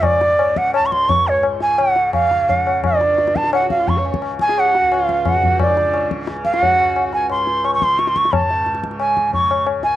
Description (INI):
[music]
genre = indian classical, Hindustani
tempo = 175 BPM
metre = 4/4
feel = straight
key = C# major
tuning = A4 = 440 Hz
[part]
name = bright bansuri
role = melody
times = 0.0-10.0 s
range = C#5 to C#6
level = -16 LUFS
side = right 1 dB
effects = none
[part]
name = tanpura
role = drone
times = 0.0-10.0 s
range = C#2 to C#3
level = -29 LUFS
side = right 1 dB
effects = cassette tape
[part]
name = tabla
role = percussion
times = 0.0-10.0 s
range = none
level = -21 LUFS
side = left 4 dB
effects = none
[part]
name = warm sarangi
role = second line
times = 2.9-7.1 s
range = D4 to C#5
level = -26 LUFS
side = right 7 dB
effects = cassette tape
[sound]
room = moderate studio reverb, RT60 0.5 s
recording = home recording on cassette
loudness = -14 LUFS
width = side -13 dB against mid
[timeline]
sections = 0.0-8.3 A section; 8.3-10.0 B section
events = speeding up 0.0-10.0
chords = none